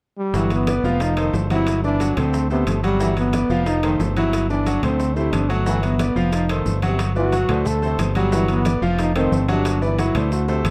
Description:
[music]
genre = latin, salsa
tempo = 180 BPM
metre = 4/4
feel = straight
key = G major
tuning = A4 = 439 Hz
[part]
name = clear trombone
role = melody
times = 0.2-10.6 s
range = G3 to A4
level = -25 LUFS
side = equal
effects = none
[part]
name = clear trombone section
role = second line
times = 0.3-10.7 s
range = C3 to E3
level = -30 LUFS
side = equal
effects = none
[part]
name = bright concert grand piano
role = accompaniment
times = 0.3-10.7 s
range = F3 to F#5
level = -27 LUFS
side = equal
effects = none
[part]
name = fingered electric bass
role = bass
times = 0.3-10.7 s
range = F1 to D2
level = -24 LUFS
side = equal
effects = none
[part]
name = bongos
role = percussion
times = 0.3-10.6 s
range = none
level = -38 LUFS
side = equal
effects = none
[part]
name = congas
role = percussion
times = 0.3-10.7 s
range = none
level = -31 LUFS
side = equal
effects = none
[part]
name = maracas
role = percussion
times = 0.3-10.7 s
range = none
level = -44 LUFS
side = equal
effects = none
[part]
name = timbales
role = percussion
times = 0.5-10.7 s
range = none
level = -36 LUFS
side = equal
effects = none
[sound]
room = light reverb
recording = dark, warm production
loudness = -20 LUFS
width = mono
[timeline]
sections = 0.3-10.7 A section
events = drum fill 10.5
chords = 0.3 Gmaj7; 1.0 F7; 1.7 Gmaj7; 2.3 D7; 3.0 Gmaj7; 3.7 F7; 4.3 Gmaj7; 5.0 D7; 5.7 Gmaj7; 6.3 F7; 7.0 Gmaj7; 7.7 D7; 8.3 Gmaj7; 9.0 F7; 9.7 Gmaj7

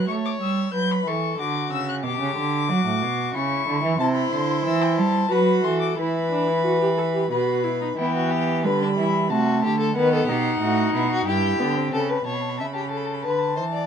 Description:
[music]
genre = classical, baroque-style fugue for string quartet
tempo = 91 BPM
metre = 3/4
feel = straight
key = E minor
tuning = A4 = 440 Hz
[part]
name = dark violin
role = melody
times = 0.0-13.9 s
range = F#5 to G6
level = -28 LUFS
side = left 6 dB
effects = none
[part]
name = rich violin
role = second line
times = 0.0-13.9 s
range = D4 to E5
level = -26 LUFS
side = left 4 dB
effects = none
[part]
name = warm viola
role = accompaniment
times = 0.0-0.1, 4.0-11.9 s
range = G3 to A4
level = -25 LUFS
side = right 2 dB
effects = none
[part]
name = warm cello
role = bass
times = 0.0-13.9 s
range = G2 to A3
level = -25 LUFS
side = right 4 dB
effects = none
[sound]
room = moderate studio reverb, RT60 0.6 s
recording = dark, warm production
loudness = -20 LUFS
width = side -8 dB against mid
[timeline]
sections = 0.0-8.0 A section; 8.0-11.9 B section; 11.9-13.9 A section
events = none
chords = 0.1 A7; 1.4 D; 2.0 Gmaj7/B; 3.3 C#m; 4.0 C; 5.3 F#m7b5; 6.0 Bsus4/E; 7.3 B5; 8.0 Em; 9.3 F#dim/C; 10.0 B; 11.3 Em/G; 11.9 A; 13.2 D5

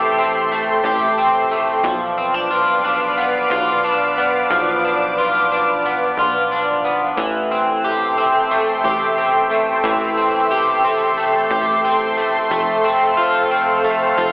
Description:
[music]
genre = dream pop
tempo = 90 BPM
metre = 4/4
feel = straight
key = A minor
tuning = A4 = 440 Hz
[part]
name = lush unison pad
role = sustained chords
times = 0.0-14.3 s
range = A4 to D6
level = -19 LUFS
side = equal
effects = chorus
[part]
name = electric guitar at the edge of break-up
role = arpeggios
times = 0.0-14.3 s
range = E3 to G4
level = -17 LUFS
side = equal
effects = analog chorus, dub echo
[part]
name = plucky analog bass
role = bass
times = 0.0-14.3 s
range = F1 to B1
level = -30 LUFS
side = equal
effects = none
[sound]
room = wet spring reverb, RT60 1.0 s, digital ambience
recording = echo-heavy mix, telephone sound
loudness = -15 LUFS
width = side -24 dB against mid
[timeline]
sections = 0.0-14.3 A section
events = none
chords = 0.0 Am7; 1.8 Bdim; 7.2 Am7; 12.5 F

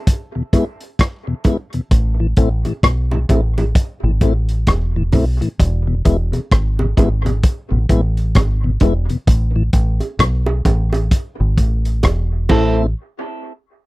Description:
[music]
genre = dub reggae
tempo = 65 BPM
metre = 4/4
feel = swing 61% on 16ths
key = unclear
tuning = A4 = 440 Hz
[part]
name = crunchy breakbeat drum kit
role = drums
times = 0.1-12.8 s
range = crash cymbal, hi-hat, kick drum, rim click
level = -14 LUFS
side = equal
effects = none
[part]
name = mellow tonewheel organ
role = accompaniment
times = 0.4-12.9 s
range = E2 to E4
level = -18 LUFS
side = left 3 dB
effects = slow rotary speaker
[part]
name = bongos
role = percussion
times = 0.5-12.9 s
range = none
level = -27 LUFS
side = right 4 dB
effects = dub echo
[part]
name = deep dub fingered electric bass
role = bass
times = 1.9-12.9 s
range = E1 to B1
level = -16 LUFS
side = equal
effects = none
[part]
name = semi-hollow electric guitar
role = accompaniment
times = 12.5-12.8 s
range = C4 to A4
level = -23 LUFS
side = right 4 dB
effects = dub echo
[sound]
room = little or no reverb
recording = dry, close 1970s-style studio recording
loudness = -14 LUFS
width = side -20 dB against mid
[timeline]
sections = 0.0-5.6 A section; 5.6-13.0 B section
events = break 0.0-5.6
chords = 0.0 E; 1.9 Am; 5.6 E; 12.5 Am; 13.0 N.C.

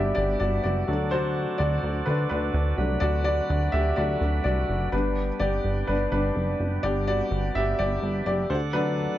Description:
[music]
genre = piano-driven pop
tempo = 126 BPM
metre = 4/4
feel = swing 56% on 16ths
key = G major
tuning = A4 = 439 Hz
[part]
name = warm upright piano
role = accompaniment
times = 0.0-9.2 s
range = F#3 to E5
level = -26 LUFS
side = left 1 dB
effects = none
[part]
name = bright tonewheel organ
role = sustained chords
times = 0.0-9.2 s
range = D3 to F#5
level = -34 LUFS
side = right 5 dB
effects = wide subtle chorus
[part]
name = plucky analog bass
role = bass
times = 0.0-9.1 s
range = F#1 to D2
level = -26 LUFS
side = equal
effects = none
[sound]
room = light reverb, small room ambience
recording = nothing above 7.6 kHz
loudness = -23 LUFS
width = side -13 dB against mid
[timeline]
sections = 0.0-9.2 A section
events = upright piano solo 0.0-9.2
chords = 0.0 G; 0.9 D; 4.9 G; 8.5 D

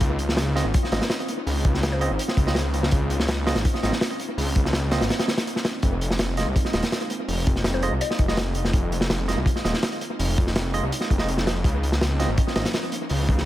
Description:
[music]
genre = drum and bass, jungle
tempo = 165 BPM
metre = 4/4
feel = straight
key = unclear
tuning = A4 = 440 Hz
[part]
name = airy breathy pad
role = sustained chords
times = 0.0-13.5 s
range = F3 to F4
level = -33 LUFS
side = equal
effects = chorus, vintage 12-bit sampler grit
[part]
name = detuned saw bass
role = bass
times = 0.0-13.5 s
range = Eb1 to Db2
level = -25 LUFS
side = equal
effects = none
[part]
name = crunchy breakbeat drum kit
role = drums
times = 0.0-13.5 s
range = hi-hat, kick drum, snare drum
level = -23 LUFS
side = equal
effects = analog delay
[part]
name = bell-like tine electric piano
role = stabs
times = 0.6-12.7 s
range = Ab3 to Eb5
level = -31 LUFS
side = right 4 dB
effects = analog delay
[part]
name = mallet-like synth pluck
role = melody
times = 1.9-2.1, 7.7-8.3 s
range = C5 to Eb5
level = -32 LUFS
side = left 3 dB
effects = chorus, analog delay
[sound]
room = studio reverb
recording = echo-heavy mix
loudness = -21 LUFS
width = side -14 dB against mid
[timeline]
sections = 0.0-13.5 A section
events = none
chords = 0.0 Dbmaj9; 5.8 Fm7; 11.6 Dbmaj9

